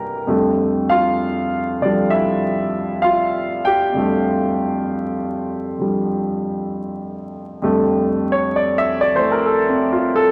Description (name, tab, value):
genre	solo jazz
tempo	65 BPM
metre	4/4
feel	swing 69% on 8ths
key	F major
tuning	A4 = 439 Hz
part	warm grand piano	solo	0.0-10.3 s	C2 to Bb5	-19 LUFS	equal	none
room	wet studio reverb, RT60 0.8 s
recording	vinyl crackle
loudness	-19 LUFS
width	mono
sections	0.0-7.6 A section; 7.6-10.3 B section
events	grand piano solo 7.6-10.3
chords	0.3 F69